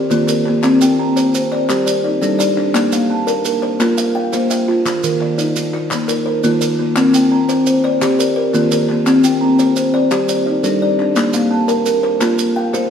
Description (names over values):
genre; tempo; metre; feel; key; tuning
southern african traditional, mbira-style interlocking cycle; 114 BPM (dotted quarters); 12/8; straight; C dorian; A4 = 440 Hz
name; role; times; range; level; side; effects
kalimba; arpeggios; 0.0-12.9 s; Eb3 to G5; -15 LUFS; left 3 dB; tape echo
buzzing kalimba; arpeggios; 0.1-12.9 s; Eb3 to Bb5; -17 LUFS; right 3 dB; none
group handclap; percussion; 0.1-12.8 s; none; -28 LUFS; left 2 dB; none
maracas; percussion; 0.1-12.9 s; none; -26 LUFS; right 6 dB; none
room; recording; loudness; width
moderate stone room reverb, RT60 1.3 s; band playing live in one room; -13 LUFS; side -8 dB against mid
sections
0.0-12.9 A section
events
none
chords
0.0 Eb5; 0.6 C5; 1.7 G5; 2.7 Bb; 4.9 Eb5; 7.0 C5; 8.0 Eb; 9.1 C5; 10.1 G5; 11.2 Bb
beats
0.10 | 0.63 1.16 1.69 2.22 | 2.75 3.28 3.81 4.33 | 4.86 5.39 5.91 6.44 | 6.96 7.49 8.01 8.54 | 9.06 9.59 10.11 10.64 | 11.16 11.69 12.21 12.74